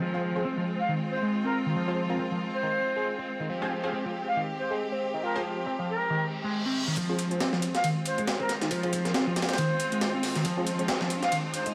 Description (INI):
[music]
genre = breakbeat, breaks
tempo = 138 BPM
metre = 4/4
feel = swing 57% on 16ths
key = F minor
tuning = A4 = 444 Hz
[part]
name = bright studio string section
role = sustained chords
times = 0.0-11.7 s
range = Ab3 to G4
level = -37 LUFS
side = equal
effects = sidechain pumping
[part]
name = overdriven synth lead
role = riff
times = 0.0-11.7 s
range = Eb3 to C4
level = -33 LUFS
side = equal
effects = distortion, phaser, subtle chorus, digital delay
[part]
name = orchestra-hit-like synth stab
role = stabs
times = 0.1-10.9 s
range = C4 to C5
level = -38 LUFS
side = equal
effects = built-in reverb, phaser, digital delay
[part]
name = breathy jazz flute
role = melody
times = 0.8-11.7 s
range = Bb4 to F5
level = -34 LUFS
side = equal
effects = AM radio sound, digital delay
[part]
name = reverse cymbal and riser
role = sound effects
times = 6.3-11.7 s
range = none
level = -42 LUFS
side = equal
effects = none
[part]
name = breakbeat sampler-style drum kit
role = drums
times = 7.0-11.7 s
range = hi-hat, kick drum, ride cymbal, snare drum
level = -34 LUFS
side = equal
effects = high-pass filter on cymbals, high-pass filter on kick, high-pass filter on snare, high-pass filter on hats
[part]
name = electronic hi-hat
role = drums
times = 7.0-11.7 s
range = none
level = -42 LUFS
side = equal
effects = high-pass filter on hats, high-pass filter on room
[sound]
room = moderate lush hall reverb, RT60 2.5 s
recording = vinyl crackle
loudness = -29 LUFS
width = mono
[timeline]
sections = 0.0-7.0 A section; 7.0-11.7 B section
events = filter sweep on synth stab 0.0-7.0; reverse cymbal 6.3-7.0; build-up 7.0-11.7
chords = 0.0 Fm